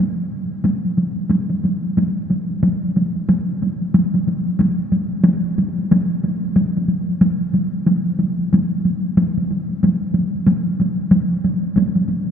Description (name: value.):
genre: japanese traditional.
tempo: 92 BPM.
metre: 4/4.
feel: swing 60% on 16ths.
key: none.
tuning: none.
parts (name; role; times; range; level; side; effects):
taiko ensemble; percussion; 0.2-12.3 s; none; -16 LUFS; equal; none.
room: wet cathedral reverb, RT60 6.2 s.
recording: recorded in a church or concert hall.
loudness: -16 LUFS.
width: side -8 dB against mid.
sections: 0.0-12.3 A section.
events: speeding up 0.0-12.3.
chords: none.